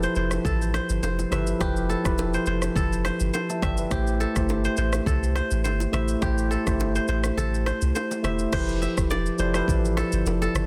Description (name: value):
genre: afrobeats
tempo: 104 BPM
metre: 4/4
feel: swing 55% on 16ths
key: unclear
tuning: A4 = 440 Hz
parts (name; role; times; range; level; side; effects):
- mellow tine electric piano; accompaniment; 0.0-10.7 s; F3 to A5; -30 LUFS; equal; subtle chorus
- kora; riff; 0.0-10.7 s; G4 to E5; -33 LUFS; equal; tape echo
- punchy sub bass; bass; 0.0-10.7 s; E1 to C2; -29 LUFS; equal; none
- afro-pop drum kit; drums; 0.0-10.7 s; crash cymbal, kick drum, rim click, shaker; -32 LUFS; equal; soft clipping on snare
- bongos and congas; percussion; 0.3-10.7 s; none; -38 LUFS; equal; none
room: little or no reverb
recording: dense, heavily limited modern master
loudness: -25 LUFS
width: mono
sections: 0.0-8.5 A section; 8.5-10.7 B section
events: kick muted 7.4-8.5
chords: 0.0 Fmaj9#11; 3.9 Am7; 8.5 Fmaj9#11